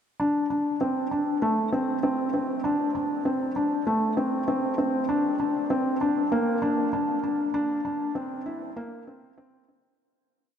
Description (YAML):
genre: electronica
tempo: 98 BPM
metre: 4/4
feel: straight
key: unclear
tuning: A4 = 440 Hz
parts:
  - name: felt-muted upright piano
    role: solo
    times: 0.2-9.9 s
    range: A3 to E4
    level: -24 LUFS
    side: equal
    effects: analog delay
room: wet huge ambient reverb, RT60 8.1 s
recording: dreamy mix soaked in reverb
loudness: -24 LUFS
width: side -8 dB against mid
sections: 0.2-10.0 build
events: build-up 0.2-10.0; fade-out 6.7-10.0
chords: none